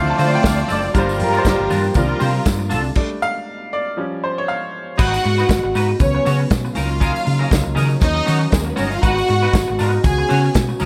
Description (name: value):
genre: disco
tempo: 119 BPM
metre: 4/4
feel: swing 56% on 16ths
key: G# dorian from 5.0 s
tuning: A4 = 440 Hz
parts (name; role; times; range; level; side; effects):
- rich studio string section; second line; 0.0-10.9 s; G3 to A#5; -26 LUFS; equal; none
- clear baby grand piano; accompaniment; 0.0-5.0 s; F3 to A5; -25 LUFS; equal; none
- mellow French horn section; sustained chords; 0.0-10.9 s; B2 to G4; -26 LUFS; equal; none
- warm horn section; stabs; 0.0-2.5 s; G3 to C5; -26 LUFS; equal; none
- hollow-body short-scale fingered electric bass; bass; 0.0-10.9 s; F#1 to D#3; -23 LUFS; equal; none
- electric guitar at the edge of break-up; accompaniment; 0.1-10.9 s; C4 to C#5; -27 LUFS; equal; analog chorus
- warm soul drum kit; drums; 0.2-10.9 s; crash cymbal, hi-hat, kick drum, snare drum; -22 LUFS; equal; none
- congas; percussion; 0.2-10.9 s; none; -32 LUFS; equal; none
- tambourine; percussion; 0.2-10.9 s; none; -40 LUFS; equal; none
room: light reverb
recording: none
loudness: -18 LUFS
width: mono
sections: 0.0-5.0 A section; 5.0-10.9 B section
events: grand piano solo 0.0-5.0; stop 3.0-5.0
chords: 0.0 Dm7; 0.9 Gm7; 2.0 C7sus4; 2.7 F6/C; 4.0 C#maj7#11/E#; 5.0 G#m7; 6.0 C#7sus4; 6.8 F#6/C#; 8.0 D#m7; 9.0 G#m7; 10.0 C#7sus4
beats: 0.44 | 0.95 1.45 1.96 2.46 | 2.97 3.47 3.98 4.48 | 4.99 5.49 6.00 6.50 | 7.01 7.51 8.02 8.53 | 9.03 9.54 10.04 10.55